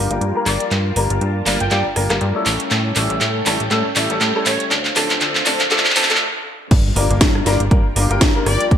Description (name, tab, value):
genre	filtered disco house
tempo	120 BPM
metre	4/4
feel	swing 57% on 16ths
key	G dorian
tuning	A4 = 441 Hz
part	clear baby grand piano	accompaniment	0.0-8.8 s	F3 to Bb4	-22 LUFS	left 2 dB	phaser, vintage 12-bit sampler grit, sidechain pumping, low-pass filter
part	string machine, full ensemble	sustained chords	0.0-8.8 s	C#4 to A5	-27 LUFS	equal	phaser, ensemble chorus, vintage 12-bit sampler grit, sidechain pumping, low-pass filter
part	plucky analog bass	bass	0.0-8.8 s	D1 to A2	-21 LUFS	equal	sidechain pumping, low-pass filter
part	house drum kit	drums	0.1-8.8 s	crash cymbal, handclaps, hi-hat, rim click, snare drum	-18 LUFS	right 1 dB	sidechain pumping on hats, sidechain pumping on cymbals, gated reverb
part	analog synth brass	melody	0.5-4.7, 8.5-8.7 s	C#5 to G5	-25 LUFS	equal	chorus, sidechain pumping, low-pass filter
part	electronic kick drum	drums	6.7-8.8 s	none	-14 LUFS	equal	none
part	impact	sound effects	6.7-8.7 s	none	-29 LUFS	equal	none
room	moderate plate reverb, RT60 2.0 s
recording	bright 1980s-style digital production, high-pass filter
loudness	-14 LUFS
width	side -9 dB against mid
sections	0.0-6.7 A section; 6.7-8.8 B section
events	build-up 0.0-6.7; drum fill 0.0-6.2; filter sweep 0.0-6.7; stop 6.2-6.7; drop 6.7-8.8; impact 6.7-8.7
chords	0.0 Gm7; 2.5 A7; 4.7 Dm7; 6.7 Gm7